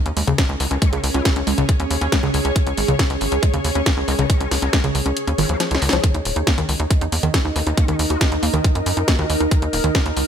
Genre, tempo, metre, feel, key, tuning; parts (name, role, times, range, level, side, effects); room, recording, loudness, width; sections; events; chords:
psychedelic trance; 138 BPM; 4/4; straight; A4 = 438 Hz
ethereal airy pad; texture; 0.0-10.3 s; Db4 to Eb5; -25 LUFS; equal; ensemble chorus, built-in reverb, phaser, sidechain pumping
woody wave-folded pluck; riff; 0.1-10.1 s; Db3 to Eb4; -25 LUFS; moving between left 4 dB and right 3 dB; chorus, auto-pan, cassette tape, sidechain pumping, tape echo
tight sequencer bass; bass; 0.1-10.2 s; Eb1 to Gb2; -22 LUFS; equal
garage drum kit; drums; 0.1-10.3 s; hi-hat, snare drum; -23 LUFS; left 1 dB; small room ambience
electronic kick drum; drums; 0.4-10.0 s; -18 LUFS; equal; small room ambience
vowel-sweep wobble bass; second line; 0.6-9.3 s; Eb3 to Gb4; -33 LUFS; left 4 dB; analog chorus, sidechain pumping, high-pass filter, ping-pong delay
overtone-sweeping drone; sustained chords; 6.9-10.3 s; Eb4; -27 LUFS; right 3 dB; chorus, built-in reverb, sidechain pumping
light reverb; -16 LUFS; side -8 dB against mid
0.0-10.3 A section
kick drops out 5.2-6.0; drum fill 5.6-6.0
0.0 Db5; 6.0 Eb5